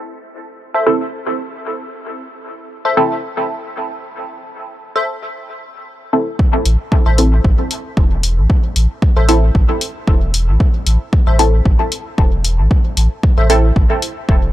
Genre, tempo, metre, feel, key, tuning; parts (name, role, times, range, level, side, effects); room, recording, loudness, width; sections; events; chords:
dub techno; 114 BPM; 4/4; swing 54% on 16ths; A minor; A4 = 442 Hz
wavetable chord stab; riff; 0.7-13.5 s; A4 to E5; -23 LUFS; left 2 dB; sidechain pumping, dub echo
filtered dub chord stab; stabs; 0.9-13.6 s; C4 to A4; -19 LUFS; right 1 dB; phaser, sidechain pumping, dub echo
electronic kick drum; drums; 6.4-14.4 s; -13 LUFS; equal; overdrive
warm sub bass; bass; 6.7-14.5 s; E1 to A1; -13 LUFS; equal; tube saturation, sidechain pumping
electronic hi-hat; drums; 6.7-14.1 s; -20 LUFS; left 3 dB; overdrive
digital ambience; dry, gritty hardware recording, low-pass filter; -13 LUFS; side -15 dB against mid
0.0-6.4 A section; 6.4-14.5 B section
filter sweep 0.0-6.4
0.0 Am